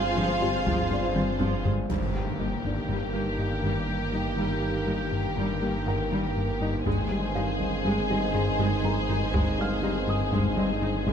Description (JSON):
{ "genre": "cinematic, hybrid orchestral and electronic film score", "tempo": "121 BPM", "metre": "5/4", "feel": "straight", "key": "unclear", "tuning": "A4 = 440 Hz", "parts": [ { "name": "warm symphonic violin section", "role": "melody", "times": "0.0-11.1 s", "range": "Bb4 to F5", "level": "-36 LUFS", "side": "left 2 dB", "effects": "none" }, { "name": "rich symphonic violin section", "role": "second line", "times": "0.0-11.1 s", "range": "G4 to C5", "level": "-34 LUFS", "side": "left 3 dB", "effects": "none" }, { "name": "warm symphonic viola section", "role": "accompaniment", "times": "0.0-11.1 s", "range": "F3 to F4", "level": "-36 LUFS", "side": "right 2 dB", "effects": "none" }, { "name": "analog drone", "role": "sustained chords", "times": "0.0-11.1 s", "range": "Eb3 to G5", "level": "-33 LUFS", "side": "right 1 dB", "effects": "chorus" }, { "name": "fat analog bass", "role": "riff", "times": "0.0-11.1 s", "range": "G2 to G3", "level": "-31 LUFS", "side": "left 2 dB", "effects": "none" }, { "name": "detuned saw bass", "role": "bass", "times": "0.0-11.1 s", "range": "G1", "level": "-33 LUFS", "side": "right 1 dB", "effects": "none" }, { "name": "rich symphonic cello section", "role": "bass", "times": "0.0-11.1 s", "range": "G2 to F4", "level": "-36 LUFS", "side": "right 4 dB", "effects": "none" }, { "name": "felt-muted upright piano", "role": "texture", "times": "0.0-11.1 s", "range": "D4 to F6", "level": "-41 LUFS", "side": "left 2 dB", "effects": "none" }, { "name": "thumb-piano-like synth pluck", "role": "arpeggios", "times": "0.2-11.1 s", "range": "Eb3 to Ab4", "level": "-36 LUFS", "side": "left 7 dB", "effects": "chorus, ping-pong delay" }, { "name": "warm studio double bass section", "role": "bass", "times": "0.2-1.7 s", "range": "G1", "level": "-34 LUFS", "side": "right 5 dB", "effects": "none" }, { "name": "taiko ensemble", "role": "drums", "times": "0.7-2.9, 6.9-11.1 s", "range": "none", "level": "-32 LUFS", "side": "equal", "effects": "none" }, { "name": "dark trombone section", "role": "sustained chords", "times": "1.9-11.1 s", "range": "Eb3 to Bb3", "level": "-35 LUFS", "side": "right 6 dB", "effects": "none" }, { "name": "impact", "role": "sound effects", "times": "1.9-4.4 s", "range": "none", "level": "-35 LUFS", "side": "right 1 dB", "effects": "none" } ], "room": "light reverb", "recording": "close, detailed microphones", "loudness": "-24 LUFS", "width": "side -8 dB against mid", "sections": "0.0-1.9 A section; 1.9-11.1 B section", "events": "drum fill 1.2-1.9; impact 1.9-4.4", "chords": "0.0 Fm/G; 1.9 Eb/G; 6.9 Ab/G" }